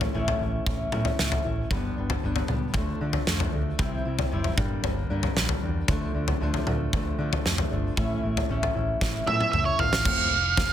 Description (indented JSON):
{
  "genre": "quiet-loud alternative rock",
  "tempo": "115 BPM",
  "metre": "4/4",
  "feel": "straight",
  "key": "D minor",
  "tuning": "A4 = 440 Hz",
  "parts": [
    { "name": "fingerpicked steel-string acoustic guitar", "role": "arpeggios", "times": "0.0-10.7 s", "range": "G2 to E4", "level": "-30 LUFS", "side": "left 2 dB", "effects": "none" },
    { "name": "picked electric bass", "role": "bass", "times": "0.0-10.7 s", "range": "F1 to D3", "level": "-30 LUFS", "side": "equal", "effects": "none" },
    { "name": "big rock drum kit", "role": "drums", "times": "0.0-10.7 s", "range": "crash cymbal, kick drum, snare drum, toms", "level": "-26 LUFS", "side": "equal", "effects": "none" },
    { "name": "octave-fuzz lead guitar", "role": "melody", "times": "9.3-10.7 s", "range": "C#5 to F5", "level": "-24 LUFS", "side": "right 4 dB", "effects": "distortion" }
  ],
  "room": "studio ambience",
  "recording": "dense, heavily limited modern master",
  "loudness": "-24 LUFS",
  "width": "side -10 dB against mid",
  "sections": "0.0-10.1 A section",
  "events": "drum fill 9.0-10.1",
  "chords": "0.0 A; 1.7 G; 2.8 Dm; 3.8 C; 4.6 Gm; 5.9 Dm; 8.0 A; 10.1 F",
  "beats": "0.14 0.66 1.18 | 1.71 2.23 2.75 3.27 | 3.79 4.32 4.84 5.36 | 5.88 6.41 6.93 7.45 | 7.97 8.49 9.02 9.54 | 10.06 10.58"
}